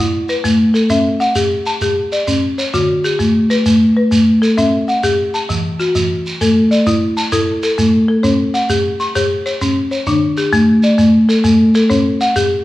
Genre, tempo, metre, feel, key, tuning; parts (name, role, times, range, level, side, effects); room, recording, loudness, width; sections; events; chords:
southern african traditional, mbira-style interlocking cycle; 131 BPM (dotted quarters); 12/8; straight; A equiheptatonic; A4 = 443 Hz
folk marimba with medium hard mallets; arpeggios; 0.0-12.6 s; D3 to C6+43c; -12 LUFS; left 1 dB
shekere; percussion; 0.3-12.5 s; -20 LUFS; right 3 dB
wet recital hall reverb, RT60 1.6 s; studio reverb; -12 LUFS; side -16 dB against mid
0.0-6.4 A section; 6.4-12.6 B section
0.0 A5; 0.9 C; 2.7 D; 3.7 Asus2; 4.6 C; 5.5 Esus24; 6.4 A5; 8.2 C5; 10.1 D5; 11.0 Asus4; 11.9 C5